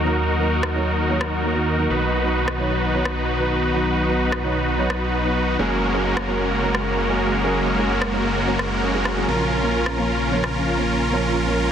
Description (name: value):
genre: EDM, festival progressive house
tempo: 130 BPM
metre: 4/4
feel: straight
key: F# major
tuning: A4 = 440 Hz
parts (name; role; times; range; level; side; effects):
- felt-muted upright piano; accompaniment; 0.0-11.7 s; E#3 to C#5; -26 LUFS; right 2 dB; tape echo
- lush unison pad; sustained chords; 0.0-11.7 s; C#3 to F#4; -27 LUFS; left 1 dB; chorus
- supersaw chords; riff; 0.0-11.7 s; G#3 to B4; -22 LUFS; equal; low-pass filter, tape echo
- wide detuned saw bass; bass; 0.0-11.7 s; F#1 to D#2; -26 LUFS; left 1 dB; chorus
- electronic rim click; drums; 0.6-10.5 s; none; -31 LUFS; left 1 dB; none
room: moderate huge ambient reverb, RT60 4.1 s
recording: dense, heavily limited modern master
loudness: -18 LUFS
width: side -8 dB against mid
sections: 0.0-11.7 A section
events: filter sweep on analog synth pad 0.0-11.7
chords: 0.0 D#m; 1.9 B; 5.6 F#add9; 9.3 A#m